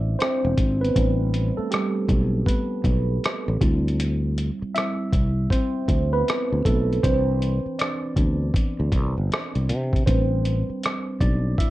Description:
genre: R&B, neo-soul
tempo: 79 BPM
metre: 4/4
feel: swing 64% on 16ths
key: A minor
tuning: A4 = 440 Hz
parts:
  - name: tine electric piano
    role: accompaniment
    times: 0.0-11.7 s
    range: E3 to E5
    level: -25 LUFS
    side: right 1 dB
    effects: phaser
  - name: sustaining fretless electric bass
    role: bass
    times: 0.0-11.5 s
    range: E1 to C3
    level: -23 LUFS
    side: equal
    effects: none
  - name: dusty soul sampler-style drum kit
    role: drums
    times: 0.2-11.7 s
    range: hi-hat, kick drum, rim click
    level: -24 LUFS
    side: equal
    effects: none
room: light reverb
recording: worn, warbling old tape, cassette tape, warbly pitch drift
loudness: -20 LUFS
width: side -16 dB against mid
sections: 0.0-11.7 A section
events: tine electric piano solo 0.0-11.7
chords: 0.0 Am11; 3.6 D9sus4; 7.0 Cmaj9; 10.1 Am11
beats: 0.20 | 0.95 1.72 2.47 3.23 | 3.99 4.75 5.51 6.27 | 7.03 7.79 8.55 9.31 | 10.07 10.83 11.59

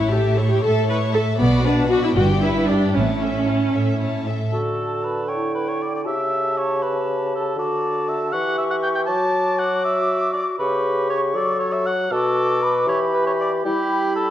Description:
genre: quick classical-period movement for symphony orchestra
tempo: 79 BPM (dotted quarters)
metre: 6/8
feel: straight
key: D major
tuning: A4 = 439 Hz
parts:
  - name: rich chamber violin section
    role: melody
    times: 0.0-4.5 s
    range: E5 to C#6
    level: -33 LUFS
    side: left 7 dB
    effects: none
  - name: rich chamber violin section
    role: second line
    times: 0.0-4.5 s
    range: E4 to E5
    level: -26 LUFS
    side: left 3 dB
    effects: none
  - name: rich chamber viola section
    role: accompaniment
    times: 0.0-4.3 s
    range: B3 to B4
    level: -20 LUFS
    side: equal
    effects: none
  - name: clear chamber cello section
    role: bass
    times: 0.0-4.4 s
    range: G2 to B2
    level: -22 LUFS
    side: right 1 dB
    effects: none
  - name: rich chamber double bass section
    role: bass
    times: 0.0-3.4 s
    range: G1 to B1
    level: -23 LUFS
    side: right 2 dB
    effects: none
  - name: mellow cor anglais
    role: second line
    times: 4.5-14.3 s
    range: G4 to A5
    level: -23 LUFS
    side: right 1 dB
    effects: none
  - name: silver concert flute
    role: second line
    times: 4.5-14.3 s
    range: G5 to D6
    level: -28 LUFS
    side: left 2 dB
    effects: none
  - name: warm clarinet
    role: second line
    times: 4.5-14.3 s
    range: E4 to A4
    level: -26 LUFS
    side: left 2 dB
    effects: none
  - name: mellow bassoon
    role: accompaniment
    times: 4.5-14.3 s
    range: B2 to G3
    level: -24 LUFS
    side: equal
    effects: none
room: moderate scoring stage reverb, RT60 1.7 s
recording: dark, warm production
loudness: -18 LUFS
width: side -11 dB against mid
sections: 0.0-4.5 A section; 4.5-14.3 B section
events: none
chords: 0.0 A; 1.4 Bm; 2.2 Em7/G; 2.9 A; 4.5 D; 6.1 A7/C#; 7.6 D; 8.3 C#dim/E; 9.1 D/F#; 10.6 Bsus2/C#; 11.4 F#m; 12.1 Bm7; 12.9 Em; 13.6 Em/G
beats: 0.63 | 1.39 2.16 | 2.95 3.74 | 4.53 5.30 | 6.06 6.82 | 7.58 8.33 | 9.08 9.84 | 10.60 11.36 | 12.12 12.88 | 13.65

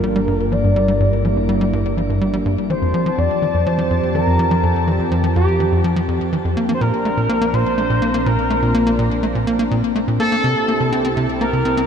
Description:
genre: ambient, sequencer-driven space music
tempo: 124 BPM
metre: 4/4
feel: straight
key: unclear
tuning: A4 = 436 Hz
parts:
  - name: expressive synth lead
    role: melody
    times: 0.0-11.9 s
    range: G4 to D5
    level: -21 LUFS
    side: equal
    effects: lush chorus, shimmer reverb, ping-pong delay
  - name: lush unison pad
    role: sustained chords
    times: 0.0-11.9 s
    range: C3 to A5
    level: -22 LUFS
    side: equal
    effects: chorus, shimmer reverb
  - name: concert harp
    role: arpeggios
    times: 0.0-1.1 s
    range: G4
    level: -46 LUFS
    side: right 1 dB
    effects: none
  - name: tight sequencer bass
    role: riff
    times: 0.0-11.8 s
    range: F2 to C4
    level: -19 LUFS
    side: equal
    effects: cassette tape, shimmer reverb, ping-pong delay
  - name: analog drone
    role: bass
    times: 0.0-11.9 s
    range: G1 to F2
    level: -24 LUFS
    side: equal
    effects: chorus
room: wet huge ambient reverb, RT60 8.0 s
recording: none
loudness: -15 LUFS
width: side -7 dB against mid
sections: 0.0-11.9 A section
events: none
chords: 0.0 Gm7; 2.7 Fadd9; 6.6 Bbadd9; 10.4 C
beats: 0.28 | 0.76 1.25 1.73 2.21 | 2.70 3.18 3.67 4.15 | 4.63 5.12 5.60 6.08 | 6.57 7.05 7.54 8.02 | 8.50 8.99 9.47 9.96 | 10.44 10.92 11.41

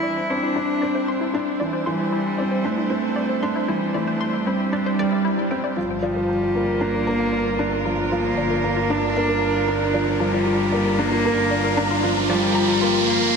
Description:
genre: piano and strings electronica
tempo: 115 BPM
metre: 4/4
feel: straight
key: G dorian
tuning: A4 = 440 Hz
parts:
  - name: warm cello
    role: melody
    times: 0.0-13.4 s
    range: G3 to E4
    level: -24 LUFS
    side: equal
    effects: ping-pong delay
  - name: dark string quartet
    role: sustained chords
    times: 0.0-13.1 s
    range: G3 to C5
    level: -29 LUFS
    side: right 2 dB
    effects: none
  - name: analog pluck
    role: arpeggios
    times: 0.0-12.9 s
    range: E4 to C6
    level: -29 LUFS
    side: left 2 dB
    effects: chorus, ping-pong delay
  - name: felt-muted upright piano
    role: riff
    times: 0.0-13.4 s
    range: E3 to D4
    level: -23 LUFS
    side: equal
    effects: ping-pong delay
  - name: swell and riser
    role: sound effects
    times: 5.0-13.4 s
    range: none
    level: -28 LUFS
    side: right 3 dB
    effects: none
  - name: warm chamber double bass section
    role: bass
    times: 5.8-13.1 s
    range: G1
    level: -29 LUFS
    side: equal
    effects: none
room: wet lush hall reverb, RT60 3.1 s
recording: dreamy mix soaked in reverb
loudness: -19 LUFS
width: side -5 dB against mid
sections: 0.0-5.8 A section; 5.8-13.4 B section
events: swell 5.0-5.8; build-up 5.8-13.4; riser 5.8-13.4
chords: 0.0 Cadd9; 5.8 Gm7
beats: 0.03 0.56 1.08 | 1.60 2.12 2.64 3.16 | 3.69 4.21 4.73 5.25 | 5.77 6.29 6.82 7.34 | 7.86 8.38 8.90 9.43 | 9.95 10.47 10.99 11.51 | 12.03 12.55 13.08

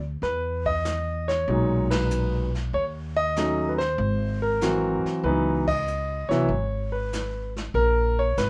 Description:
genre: jazz piano trio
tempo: 96 BPM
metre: 4/4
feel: swing 69% on 8ths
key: G# minor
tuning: A4 = 440 Hz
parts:
  - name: upright bass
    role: bass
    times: 0.0-8.5 s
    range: G#1 to E2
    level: -30 LUFS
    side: equal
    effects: none
  - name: warm concert grand piano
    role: melody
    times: 0.2-8.5 s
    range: A#2 to D#5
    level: -27 LUFS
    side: equal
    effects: none
  - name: jazz brush drum kit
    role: drums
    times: 0.2-8.5 s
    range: brushed snare drum, crash cymbal, hi-hat, kick drum, ride cymbal, snare drum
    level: -38 LUFS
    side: equal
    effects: none
room: light reverb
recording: worn, warbling old tape, cassette tape, warbly pitch drift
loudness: -25 LUFS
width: mono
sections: 0.0-8.5 A section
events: band accent 1.8-2.1, 5.6-5.9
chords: 0.2 Emaj9#11; 2.7 D#m7b5; 4.0 G#7b13; 5.2 C#m11; 7.8 G#sus2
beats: | 0.23 0.86 1.48 2.11 | 2.74 3.37 3.99 4.62 | 5.25 5.87 6.50 7.13 | 7.76 8.38

